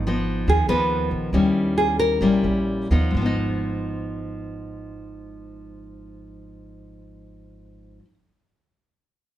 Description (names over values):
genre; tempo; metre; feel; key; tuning
bossa nova; 124-145 BPM; 4/4; straight; G# dorian; A4 = 438 Hz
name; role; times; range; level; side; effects
nylon-string guitar; accompaniment; 0.0-8.1 s; G#2 to E4; -24 LUFS; left 2 dB; none
upright bass; bass; 0.0-8.0 s; G#1 to D#2; -26 LUFS; right 1 dB; none
nylon-string guitar; melody; 0.5-2.4 s; G#4 to B4; -22 LUFS; right 1 dB; none
room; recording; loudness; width
moderate studio reverb, RT60 0.9 s; heard from further back in the room; -19 LUFS; side -12 dB against mid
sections
0.0-3.1 A section; 3.1-7.0 B section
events
slowing down 0.0-3.1; nylon-string guitar solo 0.0-3.1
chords
0.0 G#m6; 1.3 D#7b9; 3.1 G#m6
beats
0.06 0.47 0.90 | 1.32 1.76 2.21 2.67 | 3.15 3.63 4.11 4.60 | 5.08 5.57 6.05 6.53